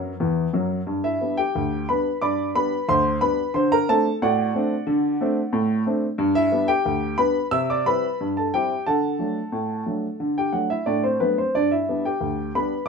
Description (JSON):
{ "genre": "ragtime piano", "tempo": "90 BPM", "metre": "2/4", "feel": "straight", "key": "G major", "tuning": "A4 = 440 Hz", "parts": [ { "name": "warm upright piano", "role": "solo", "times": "0.0-12.9 s", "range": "D2 to E6", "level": "-20 LUFS", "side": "equal", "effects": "none" } ], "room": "wet small room reverb, RT60 0.5 s", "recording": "band playing live in one room", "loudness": "-20 LUFS", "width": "side -5 dB against mid", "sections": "0.9-12.9 A section", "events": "upright piano fill 0.0-0.9", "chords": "0.0 D; 0.9 G; 3.5 D7; 6.2 G; 7.5 C; 8.9 D; 11.5 G" }